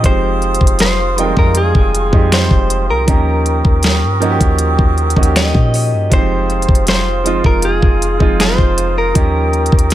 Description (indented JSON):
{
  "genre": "contemporary R&B",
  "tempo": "79 BPM",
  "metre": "4/4",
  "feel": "straight",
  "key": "F minor",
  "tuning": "A4 = 441 Hz",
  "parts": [
    { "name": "direct-recorded clean electric guitar", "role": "melody", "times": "0.0-9.9 s", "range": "Ab4 to Eb5", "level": "-19 LUFS", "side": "left 2 dB", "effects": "ping-pong delay" },
    { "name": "clear concert grand piano", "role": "accompaniment", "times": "0.0-9.9 s", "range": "F3 to G5", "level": "-19 LUFS", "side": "right 4 dB", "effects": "none" },
    { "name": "flute section", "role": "sustained chords", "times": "0.0-9.9 s", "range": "F4 to Eb6", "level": "-22 LUFS", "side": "right 2 dB", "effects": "none" },
    { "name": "clean 808-style bass", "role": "bass", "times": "0.0-9.9 s", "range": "F1 to Bb2", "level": "-16 LUFS", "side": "equal", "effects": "none" },
    { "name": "smooth R&B drum kit", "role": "drums", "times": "0.0-9.9 s", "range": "hi-hat, kick drum, snare drum", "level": "-13 LUFS", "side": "equal", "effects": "none" }
  ],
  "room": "little or no reverb",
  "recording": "none",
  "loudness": "-11 LUFS",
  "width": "side -13 dB against mid",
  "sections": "0.0-9.9 A section",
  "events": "none",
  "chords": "0.0 Fm7; 3.1 Eb7; 6.1 Fm7; 9.2 Eb7",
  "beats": "| 0.04 0.80 1.56 2.32 | 3.08 3.84 4.60 5.36 | 6.12 6.88 7.63 8.39 | 9.15 9.91"
}